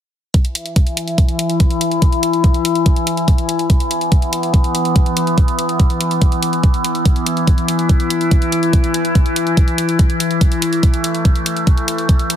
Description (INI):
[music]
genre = psychedelic trance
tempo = 143 BPM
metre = 4/4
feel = straight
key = unclear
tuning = A4 = 445 Hz
[part]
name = overtone-sweeping drone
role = sustained chords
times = 0.6-12.4 s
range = E3 to E4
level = -17 LUFS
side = left 2 dB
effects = chorus, built-in reverb, sidechain pumping
[part]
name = electronic hi-hat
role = drums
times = 0.3-12.4 s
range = none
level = -23 LUFS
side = equal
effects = none
[part]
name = electronic kick drum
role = drums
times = 0.3-12.2 s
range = none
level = -13 LUFS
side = equal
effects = none
[sound]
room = light reverb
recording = heavily compressed radio sound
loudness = -13 LUFS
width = side -10 dB against mid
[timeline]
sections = 0.3-12.4 A section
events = none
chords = 0.3 E5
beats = | 0.34 0.76 1.18 1.60 | 2.02 2.44 2.86 3.28 | 3.70 4.12 4.54 4.96 | 5.38 5.80 6.22 6.63 | 7.05 7.47 7.89 8.31 | 8.73 9.15 9.57 9.99 | 10.41 10.83 11.25 11.67 | 12.09